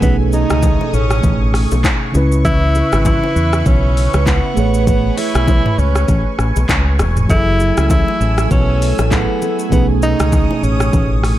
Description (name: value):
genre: afrobeats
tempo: 99 BPM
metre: 4/4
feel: swing 58% on 16ths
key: F# dorian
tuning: A4 = 440 Hz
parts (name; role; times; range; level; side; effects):
- breathy tenor saxophone; melody; 0.0-11.2 s; B3 to E4; -20 LUFS; equal; digital delay
- mellow tine electric piano; accompaniment; 0.0-11.4 s; B2 to C#5; -20 LUFS; moving between left 1 dB and right 10 dB; auto-pan
- lush unison pad; sustained chords; 0.0-11.4 s; A3 to E6; -24 LUFS; left 1 dB; chorus, phaser, sidechain pumping
- fingered electric bass; bass; 0.0-11.3 s; E1 to E2; -15 LUFS; equal; none
- afro-pop drum kit; drums; 0.0-11.4 s; handclaps, hi-hat, kick drum, rim click, shaker, toms; -18 LUFS; equal; none
- congas and bongos; percussion; 0.0-11.1 s; none; -24 LUFS; left 2 dB; none
room: little or no reverb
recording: none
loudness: -12 LUFS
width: side -14 dB against mid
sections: 0.0-11.4 A section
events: none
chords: 0.0 B13; 2.1 C#m7; 4.6 Amaj9; 7.3 F#m9; 9.7 B13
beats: | 0.02 0.63 1.24 1.84 | 2.45 3.05 3.66 4.27 | 4.87 5.48 6.08 6.69 | 7.30 7.90 8.51 9.12 | 9.72 10.33 10.93